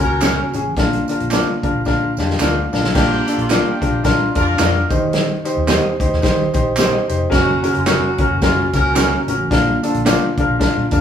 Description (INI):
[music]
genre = uptempo 1960s-style soul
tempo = 110 BPM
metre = 4/4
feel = swing 59% on 8ths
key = unclear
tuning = A4 = 440 Hz
[part]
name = warm horn section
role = second line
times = 0.0-9.3 s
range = Bb3 to Bb4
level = -23 LUFS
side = right 1 dB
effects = none
[part]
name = warm concert grand piano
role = accompaniment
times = 0.0-11.0 s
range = Bb2 to F5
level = -18 LUFS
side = left 2 dB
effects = none
[part]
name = mellow tonewheel organ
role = sustained chords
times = 0.0-2.9, 7.3-11.0 s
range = Db3 to Gb4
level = -28 LUFS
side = right 1 dB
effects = none
[part]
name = vintage muted fingered electric bass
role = bass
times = 0.0-11.0 s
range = F1 to Eb3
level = -22 LUFS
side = equal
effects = none
[part]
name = natural country drum kit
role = drums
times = 0.0-11.0 s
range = crash cymbal, hi-hat, kick drum, snare drum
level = -20 LUFS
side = equal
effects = none
[part]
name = electric guitar through a small old amp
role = stabs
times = 0.2-10.2 s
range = C4 to Eb5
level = -22 LUFS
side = right 3 dB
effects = tremolo
[part]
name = handclaps and tambourine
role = percussion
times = 0.2-11.0 s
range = none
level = -30 LUFS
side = right 3 dB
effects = none
[sound]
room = moderate large studio reverb, RT60 1.4 s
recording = band playing live in one room, small room ambience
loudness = -14 LUFS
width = side -8 dB against mid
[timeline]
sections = 0.0-3.0 A section; 3.0-11.0 A section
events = drum fill 1.9-3.0; grand piano fill 2.1-3.0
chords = 0.0 Gb; 0.8 Bb; 4.9 Eb6; 7.3 Gb; 9.5 Bb